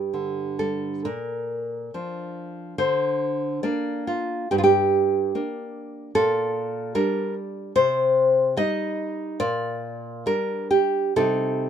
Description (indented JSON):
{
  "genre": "romantic piece for solo classical guitar",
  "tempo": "64-75 BPM",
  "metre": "2/4",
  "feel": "rubato",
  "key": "Bb major",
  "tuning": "A4 = 441 Hz",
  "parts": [
    { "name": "nylon-string guitar", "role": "solo", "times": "0.0-11.7 s", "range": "G2 to Eb5", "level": "-22 LUFS", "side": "equal", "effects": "none" }
  ],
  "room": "light reverb",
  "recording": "minimal, uncompressed stereo recording",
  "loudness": "-21 LUFS",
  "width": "side -8 dB against mid",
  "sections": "0.0-1.1 A section; 1.1-11.7 B section",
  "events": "none",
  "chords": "0.0 G5; 1.1 Bb; 2.8 Bb/D; 4.5 Gm; 6.1 Gm/Bb; 7.8 Cm; 9.4 Gm/Bb; 11.2 Cm",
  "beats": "0.12 | 1.05 1.93 | 2.78 3.63 | 4.49 5.33 | 6.13 6.95 | 7.75 8.57 | 9.42 10.28 | 11.16"
}